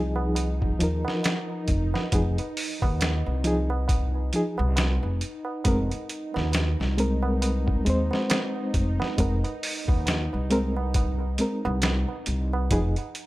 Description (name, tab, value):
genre	trip hop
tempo	68 BPM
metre	4/4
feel	swing 58% on 16ths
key	F minor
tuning	A4 = 439 Hz
part	reed electric piano	accompaniment	0.0-12.9 s	F3 to C5	-28 LUFS	equal	fast tremolo, tape echo
part	upright bass	bass	0.0-12.9 s	F1 to Eb2	-26 LUFS	equal	none
part	bowed-like drone	texture	0.1-13.3 s	Eb4	-37 LUFS	right 2 dB	built-in reverb
part	tabla	percussion	0.2-13.1 s	none	-35 LUFS	right 4 dB	none
part	trip hop sampler-style drum kit	drums	0.4-13.3 s	hi-hat, kick drum, snare drum	-27 LUFS	equal	studio reverb
room	little or no reverb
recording	none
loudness	-23 LUFS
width	side -18 dB against mid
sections	0.0-13.3 A section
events	none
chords	0.0 Fm7